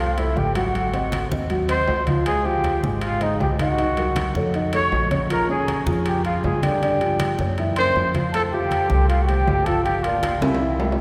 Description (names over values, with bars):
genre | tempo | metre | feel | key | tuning
Afro-Cuban jazz | 158 BPM | 4/4 | straight | unclear | A4 = 440 Hz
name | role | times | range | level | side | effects
mellow trumpet | melody | 0.0-11.0 s | Eb4 to C#5 | -27 LUFS | equal | none
mellow hollow silver concert flute | second line | 0.0-11.0 s | Eb5 to C#6 | -30 LUFS | equal | none
dark upright piano | accompaniment | 0.0-11.0 s | C#3 to Gb5 | -28 LUFS | equal | none
upright bass | bass | 0.0-10.9 s | G1 to G2 | -27 LUFS | equal | none
congas | percussion | 0.2-11.0 s | none | -31 LUFS | equal | none
timbales | percussion | 0.2-11.0 s | none | -32 LUFS | equal | none
room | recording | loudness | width
wet cathedral reverb, RT60 5.3 s | recorded in a church or concert hall | -21 LUFS | mono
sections
0.0-11.0 A section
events
drum fill 10.4-11.0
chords
0.0 Fadd9; 0.7 Ab7; 2.3 Dbmaj9; 3.8 Cm7b5; 4.5 Faug7; 5.3 Bbm7; 6.8 Gm7; 7.6 Gb7#11; 8.3 Fadd9; 9.9 Gm7